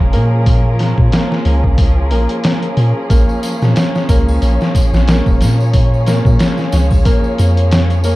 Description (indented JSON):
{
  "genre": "trip hop",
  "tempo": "91 BPM",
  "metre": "4/4",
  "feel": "swing 56% on 16ths",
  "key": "Bb minor",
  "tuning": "A4 = 438 Hz",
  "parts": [
    { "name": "muted chamber string section", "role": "sustained chords", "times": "0.0-8.2 s", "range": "F3 to Db5", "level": "-21 LUFS", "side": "left 1 dB", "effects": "vintage 12-bit sampler grit" },
    { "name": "felt-muted upright piano", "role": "arpeggios", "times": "0.0-8.2 s", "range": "Bb3", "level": "-22 LUFS", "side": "equal", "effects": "digital delay" },
    { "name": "soft 808-style bass", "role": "bass", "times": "0.0-8.2 s", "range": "F1 to Bb2", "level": "-13 LUFS", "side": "equal", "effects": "none" },
    { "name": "trip hop sampler-style drum kit", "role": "drums", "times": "0.1-8.2 s", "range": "hi-hat, kick drum, snare drum", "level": "-14 LUFS", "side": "equal", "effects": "none" },
    { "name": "tambourine and triangle", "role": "percussion", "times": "3.1-8.2 s", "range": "none", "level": "-34 LUFS", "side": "left 1 dB", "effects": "none" }
  ],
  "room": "studio reverb",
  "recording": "dark, warm production",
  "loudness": "-11 LUFS",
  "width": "side -18 dB against mid",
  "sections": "0.0-8.2 A section",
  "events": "none",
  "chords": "0.0 Bbm7"
}